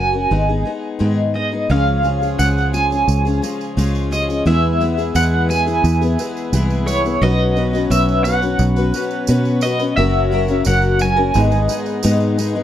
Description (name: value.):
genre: indie folk with a building arrangement.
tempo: 87 BPM.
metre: 4/4.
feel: straight.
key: B major.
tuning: A4 = 440 Hz.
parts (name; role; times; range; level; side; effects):
electric guitar at the edge of break-up; melody; 0.0-12.4 s; C#5 to G#5; -20 LUFS; right 2 dB; tremolo.
picked twelve-string acoustic guitar; accompaniment; 0.0-12.6 s; G#2 to B4; -21 LUFS; left 6 dB; none.
fingered electric bass; bass; 0.0-12.6 s; F#1 to B2; -18 LUFS; right 1 dB; none.
warm upright piano; accompaniment; 1.7-12.6 s; F#1 to C#5; -28 LUFS; right 3 dB; none.
hand-pumped harmonium; sustained chords; 1.7-12.6 s; C#3 to B4; -27 LUFS; right 2 dB; none.
tambourine; percussion; 1.7-12.5 s; none; -33 LUFS; right 12 dB; none.
room: little or no reverb.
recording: dry, close 1970s-style studio recording.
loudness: -14 LUFS.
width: side -11 dB against mid.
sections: 0.0-12.6 A section.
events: build-up 0.0-12.6.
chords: 0.3 G#m; 1.7 C#; 4.5 E; 7.2 Bsus2; 10.0 F#; 11.4 G#m.